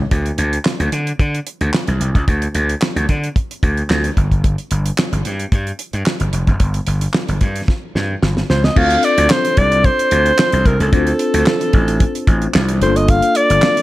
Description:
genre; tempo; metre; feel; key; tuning
early-eighties boogie funk; 111 BPM; 4/4; straight; unclear; A4 = 440 Hz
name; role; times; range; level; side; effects
gritty slap bass; bass; 0.0-13.6 s; F1 to D3; -17 LUFS; equal; overdrive
damped 70s drum kit; drums; 0.1-13.8 s; crash cymbal, handclaps, hi-hat, kick drum, snare drum; -17 LUFS; equal; gated reverb
mellow alto saxophone; melody; 8.5-13.8 s; A4 to F5; -16 LUFS; equal; none
mellow tine electric piano; accompaniment; 8.8-13.8 s; A3 to C5; -20 LUFS; left 3 dB; medium stereo tremolo
room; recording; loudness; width
studio reverb; none; -14 LUFS; side -16 dB against mid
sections
0.1-8.8 A section; 8.8-13.8 B section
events
drum fill 7.7-8.8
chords
0.1 N.C.; 8.8 Dm7; 12.8 Gm9

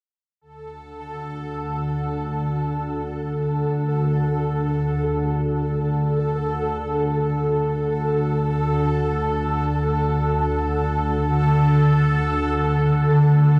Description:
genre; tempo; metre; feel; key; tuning
dark ambient drone; free time; none; none; unclear; A4 = 439 Hz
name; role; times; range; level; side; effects
organ-like drone; drone; 1.1-13.6 s; D2 to D3; -23 LUFS; equal; ensemble chorus, built-in reverb
bubbling stepped-filter texture; texture; 0.4-13.6 s; A4; -28 LUFS; equal; chorus, built-in reverb
room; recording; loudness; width
wet huge ambient reverb, RT60 8.0 s; dark, warm production; -22 LUFS; mono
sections
0.4-13.6 A section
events
none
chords
0.4 D5

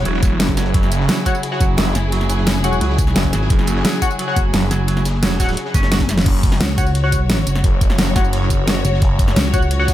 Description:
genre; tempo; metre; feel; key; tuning
dark technical drum and bass; 174 BPM; 4/4; straight; unclear; A4 = 440 Hz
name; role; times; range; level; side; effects
warm studio string section; sustained chords; 0.0-9.9 s; C#3 to C#5; -25 LUFS; left 2 dB; sidechain pumping
pulsing pluck wobble bass; bass; 0.0-9.9 s; F#1 to C#2; -18 LUFS; equal; chorus
clean electric guitar; arpeggios; 0.1-6.0 s; F#3 to F#4; -26 LUFS; right 5 dB; sidechain pumping, digital delay
phased detuned saw bass; bass; 0.1-9.4 s; E1 to F#1; -19 LUFS; equal; phaser, overdrive, sidechain pumping
crunchy breakbeat drum kit; drums; 0.1-9.9 s; hi-hat, snare drum; -34 LUFS; equal; none
dubstep drum kit; drums; 0.1-9.9 s; crash cymbal, hi-hat, snare drum, tambourine, toms; -20 LUFS; equal; none
electronic kick drum; drums; 0.2-9.9 s; none; -17 LUFS; equal; none
band-passed chord stab; stabs; 1.3-9.9 s; F#4 to F#5; -24 LUFS; left 3 dB; chorus, phaser, digital delay
room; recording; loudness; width
digital ambience; none; -14 LUFS; side -13 dB against mid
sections
0.0-6.3 A section; 6.3-9.9 A section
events
drop 0.0-6.3, 6.3-9.9; drum fill 6.0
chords
0.0 F#5

